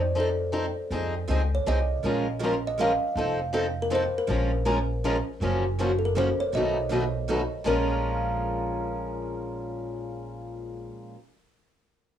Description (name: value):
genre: acoustic string swing (jazz manouche)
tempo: 160 BPM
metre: 3/4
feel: swing 63% on 8ths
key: Bb minor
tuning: A4 = 441 Hz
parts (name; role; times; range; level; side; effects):
- kalimba; melody; 0.0-10.9 s; A4 to F5; -30 LUFS; equal; cassette tape
- upright bass; bass; 0.0-10.9 s; F1 to F2; -30 LUFS; equal; none
- picked steel-string acoustic guitar; accompaniment; 0.2-11.2 s; Bb2 to Bb4; -28 LUFS; left 2 dB; cassette tape
- picked steel-string acoustic guitar; accompaniment; 0.9-11.2 s; Bb2 to Bb4; -33 LUFS; right 8 dB; cassette tape
room: light reverb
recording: home recording on cassette, small room reverb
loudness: -24 LUFS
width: side -10 dB against mid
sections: 0.0-5.4 A section; 5.4-7.7 B section; 7.7-9.9 C section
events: none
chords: 0.0 F7; 0.9 Fm7; 2.0 Bbm7; 3.2 F7; 4.3 Bbm7; 5.4 Gbmaj7; 6.5 B7; 7.7 Bbm7